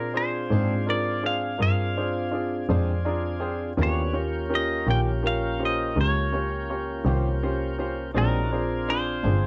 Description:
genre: blues.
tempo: 55 BPM (dotted quarters).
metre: 12/8.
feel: straight.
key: unclear.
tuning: A4 = 439 Hz.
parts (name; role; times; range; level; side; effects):
clean electric guitar; melody; 0.0-9.5 s; Bb4 to G5; -31 LUFS; equal; subtle chorus.
bright upright piano; accompaniment; 0.0-9.5 s; Db4 to Bb5; -33 LUFS; equal; none.
tonewheel organ; sustained chords; 0.0-9.5 s; Bb3 to A5; -34 LUFS; equal; slow rotary speaker.
clear double bass; bass; 0.0-9.5 s; G1 to Bb2; -29 LUFS; equal; none.
electric guitar at the edge of break-up; accompaniment; 0.5-9.5 s; Bb2 to G4; -34 LUFS; equal; harmonic tremolo.
room: moderate studio reverb, RT60 0.6 s.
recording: dark, warm production.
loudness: -26 LUFS.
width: mono.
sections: 0.0-9.5 A section.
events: upright piano fill 2.7-3.8.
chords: 0.0 Bb9; 3.8 Eb9; 8.2 Bb9.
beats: 0.51 1.60 2.69 | 3.79 4.88 5.97 7.06 | 8.15 9.25.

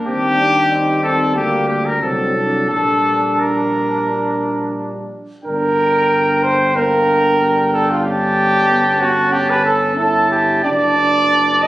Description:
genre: classical, brass quintet.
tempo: 91 BPM.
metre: 4/4.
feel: uneven beats, rubato.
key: G minor.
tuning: A4 = 439 Hz.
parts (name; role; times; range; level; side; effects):
warm trumpet; second line; 0.0-11.7 s; Bb3 to Eb5; -17 LUFS; right 1 dB; none.
warm French horn; accompaniment; 0.0-11.7 s; Bb3 to Eb4; -23 LUFS; equal; none.
clear trumpet; melody; 0.1-11.7 s; G4 to A5; -18 LUFS; left 1 dB; none.
clear trombone; accompaniment; 0.1-11.7 s; F#3 to E4; -26 LUFS; right 2 dB; none.
mellow tuba; bass; 0.1-11.7 s; F#1 to Eb2; -25 LUFS; right 1 dB; none.
room: wet recital hall reverb, RT60 1.4 s.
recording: recorded on a phone in the room, club reverb, compression.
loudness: -13 LUFS.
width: side -16 dB against mid.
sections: 0.0-5.4 A section; 5.4-11.7 A section.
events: none.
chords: 0.1 Cm/Eb; 1.4 Gm/D; 2.0 D7/C; 2.7 Gm/Bb; 5.4 Gm; 8.0 A7/G; 10.6 D/F#.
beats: | 0.08 0.72 1.36 2.02 | 2.71 3.40 4.09 4.77 | 5.45 6.11 6.75 7.40 | 8.04 8.68 9.32 9.97 | 10.64 11.30.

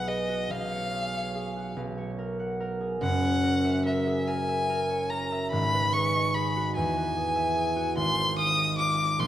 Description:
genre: classical, romantic duo for violin and harp.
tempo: 48 BPM (dotted quarters).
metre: 6/8.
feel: rubato.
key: unclear.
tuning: A4 = 440 Hz.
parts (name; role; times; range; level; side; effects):
warm violin; melody; 0.0-9.3 s; D#5 to Eb6; -28 LUFS; left 1 dB; none.
concert harp; accompaniment; 0.0-9.3 s; F#1 to F#5; -28 LUFS; right 1 dB; none.
room: moderate concert hall reverb, RT60 1.7 s.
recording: none.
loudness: -25 LUFS.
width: side -12 dB against mid.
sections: 0.0-9.3 A section.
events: none.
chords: 0.0 G#m7/B; 0.5 C#7/B; 1.8 F#/B; 3.0 F#7; 5.5 G#m; 6.8 E; 8.0 Fm7/Ab.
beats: | 0.50 1.77 | 3.02 4.27 | 5.52 6.75 | 7.97 9.20.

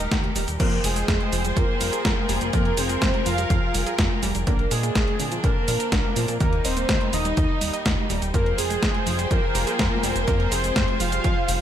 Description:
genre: italo disco.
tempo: 124 BPM.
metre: 4/4.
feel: straight.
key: F dorian.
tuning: A4 = 439 Hz.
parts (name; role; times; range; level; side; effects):
rich studio string section; sustained chords; 0.0-11.6 s; F3 to G5; -29 LUFS; equal; none.
wide unison pluck; arpeggios; 0.0-11.6 s; D3 to Eb5; -32 LUFS; right 5 dB; ping-pong delay.
chorused synth bass; bass; 0.0-11.6 s; Eb1 to Bb2; -27 LUFS; equal; none.
clean 12-bit digital drum machine; drums; 0.1-11.6 s; cabasa, crash cymbal, hi-hat, snare drum; -27 LUFS; equal; gated reverb.
electronic kick drum; drums; 0.1-11.3 s; none; -24 LUFS; equal; none.
analog synth brass; melody; 0.6-11.6 s; Ab3 to F5; -27 LUFS; equal; chorus, cassette tape, ping-pong delay.
room: light reverb.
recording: none.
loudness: -20 LUFS.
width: side -10 dB against mid.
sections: 0.6-11.6 A section.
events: none.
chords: 0.0 Eb; 0.6 Fmadd9; 4.5 Bbadd9; 6.4 Eb; 8.3 Fmadd9.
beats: 0.11 | 0.60 1.08 1.57 2.05 | 2.53 3.02 3.50 3.98 | 4.47 4.95 5.44 5.92 | 6.41 6.89 7.37 7.86 | 8.34 8.82 9.31 9.79 | 10.28 10.76 11.24.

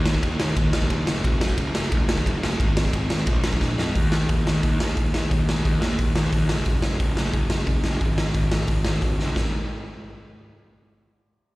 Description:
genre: punk rock.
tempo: 178 BPM.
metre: 4/4.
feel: straight.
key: unclear.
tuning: A4 = 440 Hz.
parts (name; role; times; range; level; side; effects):
fuzz picked electric bass; bass; 0.0-9.5 s; Gb1 to Gb2; -24 LUFS; equal; overdrive.
raw garage drum kit; drums; 0.1-9.4 s; hi-hat, kick drum, ride cymbal, snare drum; -22 LUFS; equal; none.
room: little or no reverb.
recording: live gig heard through the venue's PA, recital hall reverb.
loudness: -20 LUFS.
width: side -20 dB against mid.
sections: 0.0-4.0 A section; 4.0-9.4 B section; 9.4-10.7 C section.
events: drum fill 3.6-4.0, 9.2.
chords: none.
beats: 0.24 0.58 0.91 | 1.25 1.59 1.93 2.26 | 2.60 2.94 3.28 3.61 | 3.95 4.29 4.63 4.97 | 5.30 5.64 5.98 6.32 | 6.66 6.99 7.33 7.67 | 8.01 8.35 8.68 9.02 | 9.36.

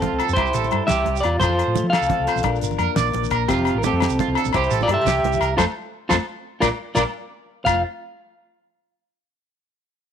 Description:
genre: highlife guitar band.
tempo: 115 BPM (dotted quarters).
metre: 12/8.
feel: straight.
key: F major.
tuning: A4 = 440 Hz.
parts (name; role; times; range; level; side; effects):
electric guitar at the edge of break-up; melody; 0.0-7.8 s; C4 to F5; -22 LUFS; equal; tremolo, slapback echo.
fingerpicked steel-string acoustic guitar; accompaniment; 0.0-7.8 s; Bb2 to Bb4; -30 LUFS; left 12 dB; none.
electric guitar at the edge of break-up; arpeggios; 0.0-7.8 s; F4 to D5; -26 LUFS; right 13 dB; tremolo, slapback echo.
damped 70s drum kit; drums; 0.0-7.7 s; crash cymbal, hi-hat, kick drum, snare drum; -28 LUFS; left 4 dB; none.
congas; percussion; 0.0-7.8 s; none; -30 LUFS; right 10 dB; none.
hollow-body short-scale fingered electric bass; bass; 0.1-7.8 s; F1 to F3; -25 LUFS; equal; none.
agogo bells; percussion; 0.2-7.7 s; none; -26 LUFS; left 16 dB; none.
shekere; percussion; 0.3-7.8 s; none; -32 LUFS; right 7 dB; none.
room: light reverb, small room ambience.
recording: 1960s-style stereo with parts hard left and right.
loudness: -18 LUFS.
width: side -8 dB against mid.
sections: 0.0-7.7 A section; 7.7-9.7 B section.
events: band accent 5.6-7.7.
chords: 0.4 C; 1.4 F; 2.5 Bb; 3.5 F; 4.5 C; 5.6 F; 6.6 Bb; 7.7 F.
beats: 0.37 0.89 | 1.41 1.93 2.46 2.98 | 3.50 4.02 4.54 5.06 | 5.58 6.10 6.62 7.14 | 7.66.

